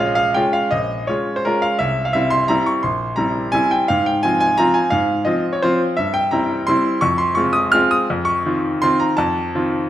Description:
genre	classical, piano waltz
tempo	159-183 BPM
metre	3/4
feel	rubato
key	F minor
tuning	A4 = 441 Hz
part	bright grand piano	solo	0.0-9.9 s	Bb1 to F6	-16 LUFS	equal	none
room	wet recital hall reverb, RT60 1.4 s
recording	none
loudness	-16 LUFS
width	side -12 dB against mid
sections	0.0-9.9 A section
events	none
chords	0.0 Bbm7; 1.8 C; 2.8 C7/Bb; 3.9 Fm/Ab; 6.0 C7/G; 7.0 Fm; 8.1 F7

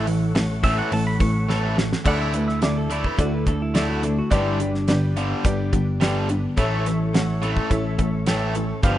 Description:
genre	folk rock and heartland rock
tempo	106 BPM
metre	4/4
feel	straight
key	D major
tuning	A4 = 437 Hz
part	pedal steel guitar	second line	0.0-6.3 s	D4 to C#6	-30 LUFS	right 2 dB	none
part	picked steel-string acoustic guitar	accompaniment	0.0-9.0 s	G2 to A4	-30 LUFS	left 3 dB	none
part	tonewheel organ	sustained chords	0.0-2.0, 6.6-9.0 s	G4 to C#6	-36 LUFS	equal	slow rotary speaker
part	biting overdriven guitar	riff	0.0-9.0 s	G2 to E4	-25 LUFS	equal	none
part	picked electric bass	bass	0.0-9.0 s	G1 to D2	-25 LUFS	equal	none
part	damped 70s drum kit	drums	0.1-9.0 s	crash cymbal, hi-hat, kick drum, snare drum	-23 LUFS	equal	none
part	bright upright piano	accompaniment	2.0-9.0 s	E4 to G5	-30 LUFS	right 2 dB	none
room	studio reverb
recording	rough home demo mix, nothing above 11.0 kHz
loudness	-19 LUFS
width	side -13 dB against mid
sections	0.0-2.1 A section; 2.1-9.0 B section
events	pedal steel guitar solo 0.0-2.1; drum fill 1.5-2.1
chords	0.0 A; 2.1 Dsus2; 4.3 G; 6.6 A

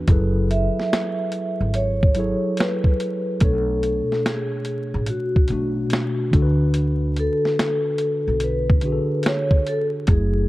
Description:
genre	lo-fi hip hop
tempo	72 BPM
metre	4/4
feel	swing 66% on 16ths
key	unclear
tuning	A4 = 440 Hz
part	mellow tine electric piano	accompaniment	0.0-10.5 s	B2 to C#5	-25 LUFS	equal	medium stereo tremolo
part	upright bass	bass	0.0-10.5 s	F#1 to D2	-23 LUFS	equal	none
part	boom bap sampler-style drum kit	drums	0.1-10.3 s	hi-hat, kick drum, snare drum	-20 LUFS	equal	none
part	vibraphone with soft mallets	melody	0.5-10.5 s	F#4 to E5	-24 LUFS	equal	none
room	light reverb, small room ambience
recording	dark, warm production, vinyl crackle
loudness	-19 LUFS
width	side -18 dB against mid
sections	0.0-10.5 A section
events	none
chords	0.1 F#m11; 3.4 Bm9; 6.3 D6

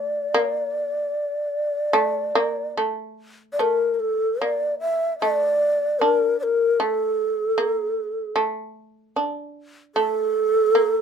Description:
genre	japanese traditional, Japanese chamber music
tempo	76 BPM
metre	4/4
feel	rubato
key	unclear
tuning	A4 = 438 Hz
part	breathy mellow long shakuhachi	melody	0.0-11.0 s	A4 to E5	-21 LUFS	equal	none
part	shamisen	second line	0.0-11.0 s	A3 to D4	-23 LUFS	right 1 dB	none
room	light reverb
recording	minimal, uncompressed stereo recording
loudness	-20 LUFS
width	side -7 dB against mid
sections	0.0-3.6 A section; 3.6-11.0 B section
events	none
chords	none

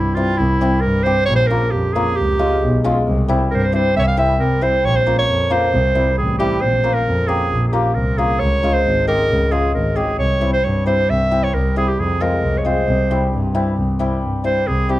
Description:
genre	klezmer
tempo	134 BPM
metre	2/4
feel	straight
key	C phrygian dominant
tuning	A4 = 440 Hz
part	clear clarinet	melody	0.0-15.0 s	E4 to F5	-18 LUFS	right 2 dB	none
part	hammered dulcimer	accompaniment	0.0-15.0 s	G3 to G4	-21 LUFS	left 2 dB	none
part	warm double bass	bass	0.0-14.9 s	Ab1 to G2	-18 LUFS	equal	none
room	moderate studio reverb, RT60 0.6 s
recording	dark, warm production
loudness	-15 LUFS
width	side -15 dB against mid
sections	0.0-6.6 A section; 6.6-13.8 B section; 13.8-15.0 C section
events	clarinet solo 13.8-15.0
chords	0.0 C; 1.3 Bbm; 2.2 Db; 3.1 C; 4.8 Bbm; 5.7 C; 6.6 Bbm; 8.4 Db; 10.2 C; 12.0 Fm; 12.9 C

